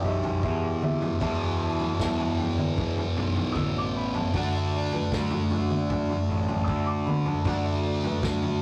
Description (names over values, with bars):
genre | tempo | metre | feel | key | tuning
psychedelic rock | 77 BPM | 4/4 | straight | unclear | A4 = 439 Hz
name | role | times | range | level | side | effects
felt-muted upright piano | melody | 0.0-8.6 s | E#4 to E6 | -37 LUFS | equal | none
fuzz guitar | riff | 0.0-8.6 s | E2 to D4 | -32 LUFS | equal | distortion, phaser
fuzz picked electric bass | bass | 0.0-8.6 s | A1 to E2 | -33 LUFS | equal | overdrive
vintage drum kit | drums | 0.2-8.6 s | kick drum, snare drum, toms | -31 LUFS | equal | none
room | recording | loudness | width
light reverb | rough rehearsal-room recording, warm saturation | -27 LUFS | mono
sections
0.0-8.6 A section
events
none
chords
0.0 Em; 4.3 D